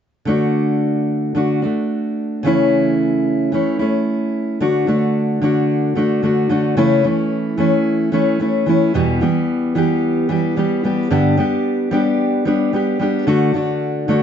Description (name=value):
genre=pop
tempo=111 BPM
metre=4/4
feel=swing 55% on 16ths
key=D major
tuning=A4 = 441 Hz
part: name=fingerpicked steel-string acoustic guitar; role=accompaniment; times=0.3-14.2 s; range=E2 to G4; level=-15 LUFS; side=equal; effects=none
room=moderate small room reverb, RT60 0.5 s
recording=nothing above 7.7 kHz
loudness=-15 LUFS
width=side -8 dB against mid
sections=0.3-4.6 A section; 4.6-14.2 B section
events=none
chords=0.3 D; 2.4 A/C#; 4.6 D; 6.8 A/C#; 8.9 Em; 11.1 G; 13.3 D